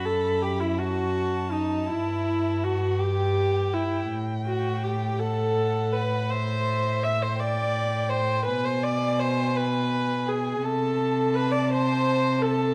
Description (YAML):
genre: classical, slow romantic movement for string quartet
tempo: 55 BPM (dotted quarters)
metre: 12/8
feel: rubato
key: unclear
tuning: A4 = 440 Hz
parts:
  - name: dark violin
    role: melody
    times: 0.0-12.7 s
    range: E5 to B5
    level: -38 LUFS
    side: equal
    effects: none
  - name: rich violin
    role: second line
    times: 0.0-12.7 s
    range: D#4 to E5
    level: -35 LUFS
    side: equal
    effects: none
  - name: warm viola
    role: accompaniment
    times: 0.0-12.7 s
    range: D#4 to E5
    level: -29 LUFS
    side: equal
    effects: none
  - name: warm cello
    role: bass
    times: 0.0-12.7 s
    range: F#2 to C3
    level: -30 LUFS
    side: equal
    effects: none
room: moderate recital hall reverb, RT60 1.7 s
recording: vinyl crackle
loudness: -26 LUFS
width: mono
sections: 0.0-12.7 A section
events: none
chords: 0.0 B5/F#; 1.9 Em/G; 4.1 Am7; 8.5 Bm6; 10.6 Am/C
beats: 0.79 1.89 3.00 | 4.10 5.18 6.29 7.38 | 8.46 9.55 10.62 11.69